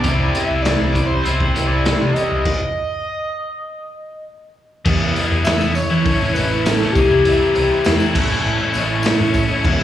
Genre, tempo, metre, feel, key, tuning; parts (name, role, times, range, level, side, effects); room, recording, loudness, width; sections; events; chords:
indie rock; 100 BPM; 4/4; straight; A4 = 440 Hz
overdriven synth lead; melody; 0.0-8.1 s; G4 to E5; -21 LUFS; left 2 dB; slapback echo
biting overdriven guitar; riff; 0.0-9.8 s; A2 to E4; -21 LUFS; left 5 dB; spring reverb, slapback echo
raw garage guitar; riff; 0.0-2.4 s; C3 to G4; -24 LUFS; right 4 dB; overdrive, wide subtle chorus, slapback echo
fingered electric bass; bass; 0.0-9.8 s; E1 to E3; -21 LUFS; right 1 dB
raw garage drum kit; drums; 0.0-9.8 s; crash cymbal, hi-hat, kick drum, snare drum; -20 LUFS; right 1 dB
soft string machine; sustained chords; 5.2-9.8 s; D4 to D6; -26 LUFS; right 3 dB; ensemble chorus
tambourine; percussion; 4.9-9.7 s; -39 LUFS; right 3 dB
small room ambience; live gig heard through the venue's PA, club reverb; -15 LUFS; side -11 dB against mid
0.0-4.9 A section; 4.9-9.8 B section
stop 2.5-4.9
0.1 C; 2.5 N.C.; 4.9 Em7; 6.1 A; 7.0 Cmaj7; 8.2 A